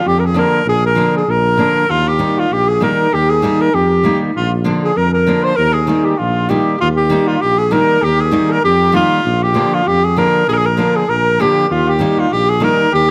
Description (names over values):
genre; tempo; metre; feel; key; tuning
balkan folk, Balkan wedding band; 98 BPM; 2/4; swing 56% on 16ths; Eb major; A4 = 445 Hz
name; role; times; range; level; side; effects
clear alto saxophone; melody; 0.0-13.1 s; F4 to C5; -17 LUFS; equal; none
mellow trumpet; second line; 0.0-13.1 s; F4 to C5; -23 LUFS; equal; none
mellow tuba; bass; 0.1-13.1 s; Bb1 to F2; -20 LUFS; equal; none
flamenco guitar; accompaniment; 0.3-12.9 s; D3 to Eb4; -21 LUFS; equal; none
room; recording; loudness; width
light reverb; none; -14 LUFS; mono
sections
0.0-6.8 A section; 6.8-13.1 A section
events
none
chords
0.0 Bb; 1.9 Eb; 4.4 Bb; 5.6 Eb; 9.3 Bb; 11.7 Eb